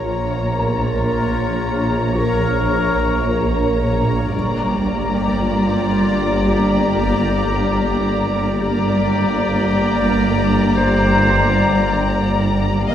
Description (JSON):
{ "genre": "cinematic", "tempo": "56 BPM", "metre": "4/4", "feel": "straight", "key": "unclear", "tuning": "A4 = 441 Hz", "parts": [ { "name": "warm symphonic violin section", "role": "melody", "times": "0.0-12.9 s", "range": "F5 to Bb5", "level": "-26 LUFS", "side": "left 4 dB", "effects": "none" }, { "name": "warm clarinet", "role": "second line", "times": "0.0-12.9 s", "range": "F4 to C5", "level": "-23 LUFS", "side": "left 1 dB", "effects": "none" }, { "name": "warm symphonic violin section", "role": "second line", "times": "0.0-12.9 s", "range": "Db5 to Eb5", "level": "-27 LUFS", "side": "left 3 dB", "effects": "none" }, { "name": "bubbling stepped-filter texture", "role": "sustained chords", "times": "0.0-12.9 s", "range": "G4 to Bb5", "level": "-25 LUFS", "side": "equal", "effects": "chorus, built-in reverb" }, { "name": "rich symphonic double bass section", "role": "bass", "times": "0.0-12.9 s", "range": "G1 to Eb2", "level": "-24 LUFS", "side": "right 2 dB", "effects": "none" }, { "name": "felt-muted upright piano", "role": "texture", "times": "0.0-4.4, 11.3-12.9 s", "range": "Bb5 to F6", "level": "-32 LUFS", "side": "left 2 dB", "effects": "none" }, { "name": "warm symphonic viola section", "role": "accompaniment", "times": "0.1-12.9 s", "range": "Bb3", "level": "-24 LUFS", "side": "right 2 dB", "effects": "none" }, { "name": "warm symphonic cello section", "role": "bass", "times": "0.1-12.9 s", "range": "Eb2 to Bb2", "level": "-22 LUFS", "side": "right 1 dB", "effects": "none" }, { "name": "swarming drone", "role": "drone", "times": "0.1-12.9 s", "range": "G1 to Eb2", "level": "-24 LUFS", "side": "left 1 dB", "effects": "built-in reverb" } ], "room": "wet scoring stage reverb, RT60 1.8 s", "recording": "heard from further back in the room", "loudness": "-15 LUFS", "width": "side -10 dB against mid", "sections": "0.0-12.9 A section", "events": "none", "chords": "0.0 Bbm; 4.3 Gm" }